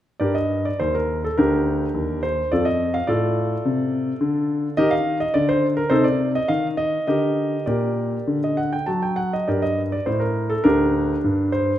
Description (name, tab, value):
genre	classical-period piano sonatina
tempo	99-107 BPM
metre	4/4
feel	rubato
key	G minor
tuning	A4 = 440 Hz
part	clear concert grand piano	solo	0.2-11.8 s	D2 to A5	-19 LUFS	equal	none
room	moderate recital hall reverb, RT60 1.7 s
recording	none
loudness	-19 LUFS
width	side -12 dB against mid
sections	0.2-11.8 A section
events	none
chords	0.2 Gm; 2.5 Dm/F; 4.8 Eb5; 5.9 Adim/C (rootless); 7.1 Gm/D; 8.3 D; 9.5 Gm